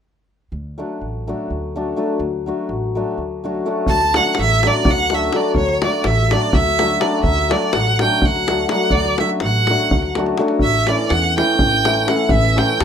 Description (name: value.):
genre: balkan folk, Balkan wedding band.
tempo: 250 BPM (eighths).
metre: 7/8.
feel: straight.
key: D major.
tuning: A4 = 440 Hz.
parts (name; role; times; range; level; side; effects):
upright bass; bass; 0.5-12.8 s; A1 to E2; -22 LUFS; right 1 dB; none.
hammered dulcimer; accompaniment; 0.8-12.8 s; E3 to F#4; -20 LUFS; left 2 dB; none.
clear violin; melody; 3.9-12.8 s; C#5 to A5; -18 LUFS; right 3 dB; none.
davul; percussion; 3.9-12.8 s; none; -21 LUFS; left 1 dB; none.
room: light reverb.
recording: rough home demo mix.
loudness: -15 LUFS.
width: side -8 dB against mid.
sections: 0.5-3.9 A section; 3.9-12.8 B section.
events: none.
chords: 0.5 D; 10.6 A.